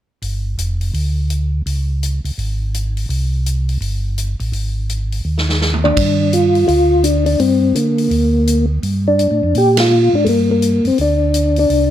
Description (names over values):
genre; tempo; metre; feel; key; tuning
soul jazz organ trio; 168 BPM; 4/4; swing 63% on 8ths; G minor; A4 = 440 Hz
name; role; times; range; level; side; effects
mellow tonewheel organ; bass; 0.2-11.9 s; F1 to D3; -17 LUFS; equal; chorus vibrato, slow rotary speaker
swinging big-band drum kit; drums; 0.2-11.8 s; hi-hat, kick drum, ride cymbal, snare drum, toms; -24 LUFS; right 2 dB; none
percussive tonewheel organ; melody; 5.8-11.9 s; A3 to G4; -14 LUFS; left 1 dB; chorus vibrato, slow rotary speaker, plate reverb
room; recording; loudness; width
light reverb; none; -14 LUFS; side -11 dB against mid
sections
0.2-6.0 A section; 6.0-11.9 B section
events
drum fill 5.2-6.0; band accent 9.7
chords
0.2 G5; 1.7 C#5; 3.1 C5; 4.5 Ab5; 6.0 Gm